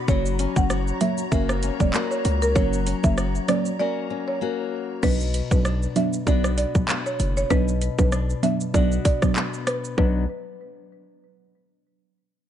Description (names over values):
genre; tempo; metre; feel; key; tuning
dancehall; 97 BPM; 4/4; swing 56% on 16ths; B harmonic minor; A4 = 440 Hz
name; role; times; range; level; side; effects
glassy FM pad; sustained chords; 0.0-5.0 s; F#4 to A#5; -35 LUFS; left 1 dB; ensemble chorus, built-in reverb, sidechain pumping
nylon-string guitar; arpeggios; 0.0-10.2 s; B2 to F#4; -29 LUFS; left 7 dB; low-pass filter
buzzing marimba with medium mallets; melody; 0.1-10.3 s; A#4 to F#5; -28 LUFS; right 1 dB; low-pass filter, ping-pong delay
deep mellow chord stab; accompaniment; 0.1-10.2 s; F#3 to D4; -26 LUFS; right 4 dB; chorus, sidechain pumping, low-pass filter
hard-hitting 808-style bass; bass; 0.1-10.3 s; E1 to C#2; -24 LUFS; equal; none
island pop drum kit; drums; 0.1-10.1 s; crash cymbal, handclaps, hi-hat, kick drum, rim click, shaker; -24 LUFS; equal; overdrive
room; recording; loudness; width
digital ambience; nothing above 10.8 kHz; -20 LUFS; side -10 dB against mid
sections
0.0-5.0 A section; 5.0-10.0 B section; 10.0-12.5 C section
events
break 3.8-5.0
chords
0.1 F#; 5.0 Bm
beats
| 0.08 0.70 1.32 1.94 | 2.56 3.17 3.79 4.41 | 5.03 5.65 6.27 6.89 | 7.50 8.12 8.74 9.36 | 9.98